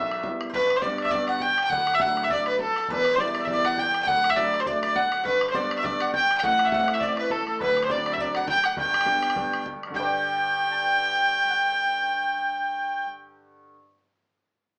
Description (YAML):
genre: celtic folk, Celtic reel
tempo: 204 BPM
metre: 4/4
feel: swing 56% on 8ths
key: G major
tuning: A4 = 444 Hz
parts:
  - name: warm fiddle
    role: melody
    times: 0.0-13.1 s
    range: A4 to G5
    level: -26 LUFS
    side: equal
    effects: none
  - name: mandolin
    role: second line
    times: 0.0-13.8 s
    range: A4 to G5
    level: -36 LUFS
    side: equal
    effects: none
  - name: mellow accordion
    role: second line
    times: 0.0-13.1 s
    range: A4 to A5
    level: -31 LUFS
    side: equal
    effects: none
  - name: bright upright piano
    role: accompaniment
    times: 0.0-13.8 s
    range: D1 to D5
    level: -35 LUFS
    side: equal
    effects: none
  - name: bodhran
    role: percussion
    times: 0.1-10.1 s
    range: none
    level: -38 LUFS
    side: equal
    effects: none
room: wet studio reverb, RT60 0.6 s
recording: band playing live in one room, small speaker sound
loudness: -24 LUFS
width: mono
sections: 0.5-10.0 A section; 10.0-12.3 B section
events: none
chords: 0.0 Em; 0.5 G; 1.7 D; 2.9 Em; 4.1 D; 5.3 G; 6.4 Am; 7.6 D7; 8.8 G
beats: 0.25 | 0.54 0.84 1.13 1.43 | 1.72 2.02 2.31 2.61 | 2.90 3.20 3.49 3.79 | 4.08 4.37 4.67 4.96 | 5.26 5.55 5.84 6.14 | 6.43 6.72 7.02 7.31 | 7.61 7.90 8.19 8.48 | 8.78 9.07 9.37 9.66 | 9.95 10.25 10.54 10.83 | 11.13 11.42 11.71 12.01